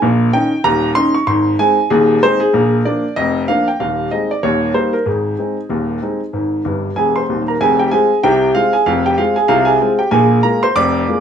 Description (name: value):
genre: ragtime piano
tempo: 95 BPM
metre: 2/4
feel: swing 57% on 16ths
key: Ab major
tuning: A4 = 440 Hz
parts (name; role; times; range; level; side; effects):
- clear grand piano; solo; 0.0-11.2 s; Eb1 to D6; -12 LUFS; equal; none
room: moderate studio ambience, RT60 0.5 s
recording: none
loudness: -13 LUFS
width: side -8 dB against mid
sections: 0.0-7.6 A section; 7.6-11.2 B section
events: grand piano fill 6.7-7.6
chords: 0.0 Eb5/Bb; 1.3 Ab; 2.5 Bb; 3.8 Ab/Eb; 4.4 Eb7; 5.1 Ab; 7.6 Fm; 10.1 Bb7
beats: | 0.01 0.65 | 1.27 1.91 | 2.54 3.17 | 3.80 4.43 | 5.07 5.71 | 6.34 6.97 | 7.61 8.24 | 8.87 9.50 | 10.13 10.77